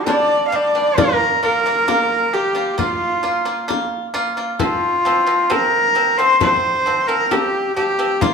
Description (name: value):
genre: mongolian traditional, Mongolian folk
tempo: 66 BPM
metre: 4/4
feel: straight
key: unclear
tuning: A4 = 440 Hz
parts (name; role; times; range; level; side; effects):
- clear horsehead fiddle; melody; 0.0-8.3 s; D4 to F5; -16 LUFS; left 1 dB; none
- pipa; arpeggios; 0.0-8.3 s; F3 to F4; -22 LUFS; right 1 dB; none
- frame drum; percussion; 0.1-8.3 s; none; -22 LUFS; left 4 dB; none
room: wet large studio reverb, RT60 1.1 s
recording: band playing live in one room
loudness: -15 LUFS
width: side -5 dB against mid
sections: 0.0-8.3 A section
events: none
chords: 0.0 G5; 1.0 Bb5; 4.6 F5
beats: 0.08 | 0.98 1.88 2.79 3.69 | 4.60 5.50 6.41 7.31 | 8.21